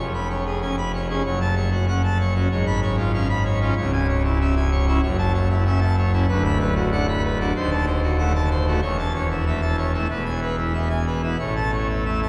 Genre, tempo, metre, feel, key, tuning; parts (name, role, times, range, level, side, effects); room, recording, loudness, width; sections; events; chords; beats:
classical, organ toccata; 95 BPM; 4/4; straight; A major from 3.8 s; A4 = 435 Hz
pipe organ, full organ; solo; 0.0-12.3 s; C#1 to B5; -22 LUFS; equal
wet cathedral reverb, RT60 6.4 s; heard from further back in the room; -22 LUFS; mono
0.0-12.3 A section
0.0 C#7/E#; 1.2 F#m; 2.5 C#7/G#; 3.8 C#m; 5.0 F#m7; 6.3 Bm/D; 7.6 D#dim7; 8.8 A/E; 10.1 E; 11.4 A
0.61 | 1.24 1.88 2.50 3.13 | 3.77 4.40 5.03 5.66 | 6.29 6.92 7.55 8.19 | 8.82 9.46 10.10 10.74 | 11.39 12.06